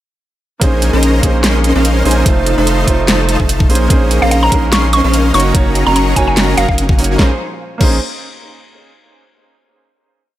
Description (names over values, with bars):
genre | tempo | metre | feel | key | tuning
future bass | 146 BPM | 4/4 | swing 54% on 16ths, half-time | Bb minor | A4 = 440 Hz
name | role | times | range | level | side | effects
warm grand piano | accompaniment | 0.6-8.0 s | A3 to Db5 | -19 LUFS | right 3 dB | sidechain pumping, tape echo
bright symphonic string section | sustained chords | 0.6-7.4 s | Bb2 to C5 | -25 LUFS | left 1 dB | sidechain pumping
dense compressed supersaw | riff | 0.6-8.0 s | Db4 to Db6 | -17 LUFS | equal | sidechain pumping
saturated sub bass | bass | 0.6-8.0 s | F1 to Bb1 | -15 LUFS | equal | sidechain pumping
dubstep drum kit | drums | 0.6-7.9 s | crash cymbal, hi-hat, snare drum | -17 LUFS | equal | none
electronic kick drum | drums | 0.6-7.9 s | none | -13 LUFS | equal | none
mallet-like synth pluck | melody | 4.2-6.7 s | F5 to Db6 | -16 LUFS | right 1 dB | chorus, sidechain pumping, tape echo
room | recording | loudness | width
digital ambience | none | -10 LUFS | side -14 dB against mid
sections
0.6-7.2 drop; 7.2-8.8 final chord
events
drop 0.6-7.2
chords
0.6 Bbm11; 2.3 F7; 3.7 Bbm11; 5.3 Gb6; 7.2 Bbm11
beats
| 0.62 1.03 1.44 1.85 | 2.26 2.67 3.08 3.49 | 3.90 4.32 4.72 5.14 | 5.55 5.96 6.37 6.78 | 7.19 7.60